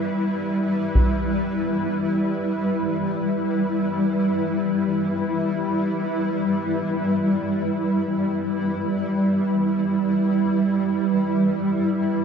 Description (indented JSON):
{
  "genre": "dark ambient drone",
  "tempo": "free time",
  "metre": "none",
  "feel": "none",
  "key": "unclear",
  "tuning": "A4 = 437 Hz",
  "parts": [
    { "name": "granular cloud pad", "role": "sustained chords", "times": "0.0-12.2 s", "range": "G3 to E5", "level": "-23 LUFS", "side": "left 1 dB", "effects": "built-in reverb, analog chorus" },
    { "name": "deep rumbling drone", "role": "drone", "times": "0.0-12.2 s", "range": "G3", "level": "-24 LUFS", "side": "right 2 dB", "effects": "built-in reverb" },
    { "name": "solo taiko drums", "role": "percussion", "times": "1.0-1.2 s", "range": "none", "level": "-20 LUFS", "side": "equal", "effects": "low-pass filter on perc" }
  ],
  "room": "wet huge ambient reverb, RT60 7.3 s",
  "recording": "dreamy mix soaked in reverb",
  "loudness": "-20 LUFS",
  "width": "side -6 dB against mid",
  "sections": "0.0-12.2 A section",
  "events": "none",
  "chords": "0.0 Em",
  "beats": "free time"
}